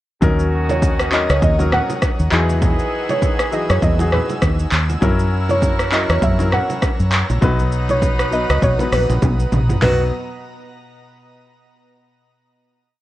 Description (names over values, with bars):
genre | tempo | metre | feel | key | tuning
afrobeats | 100 BPM | 4/4 | swing 58% on 16ths | B major | A4 = 441 Hz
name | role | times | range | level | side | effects
mellow horn section | second line | 0.2-10.0 s | D#3 to B4 | -27 LUFS | right 1 dB | none
warm grand piano | accompaniment | 0.2-10.1 s | E3 to B4 | -24 LUFS | left 3 dB | none
airy breathy pad | sustained chords | 0.2-10.1 s | B2 to E6 | -31 LUFS | right 1 dB | chorus
fingered electric bass | bass | 0.2-10.1 s | A#1 to F#2 | -18 LUFS | equal | none
deep house drum kit | drums | 0.2-10.0 s | handclaps, hi-hat, kick drum, rim click, shaker, snare drum, toms | -19 LUFS | equal | overdrive, vintage 12-bit sampler grit
congas and bongos | percussion | 0.2-10.1 s | none | -27 LUFS | right 4 dB | none
soft round pluck | melody | 0.7-10.1 s | B4 to F#5 | -22 LUFS | right 1 dB | chorus
room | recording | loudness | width
light reverb, digital ambience | worn, warbling old tape, cassette tape, warbly pitch drift | -15 LUFS | side -15 dB against mid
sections
0.2-9.8 chorus; 9.8-12.2 final chord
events
drum fill 9.2-9.8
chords
0.2 D#m7; 2.3 Emaj9; 5.0 F#7; 7.4 Bmaj7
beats
| 0.22 0.82 1.42 2.02 | 2.62 3.22 3.82 4.42 | 5.02 5.62 6.22 6.82 | 7.42 8.02 8.62 9.22 | 9.82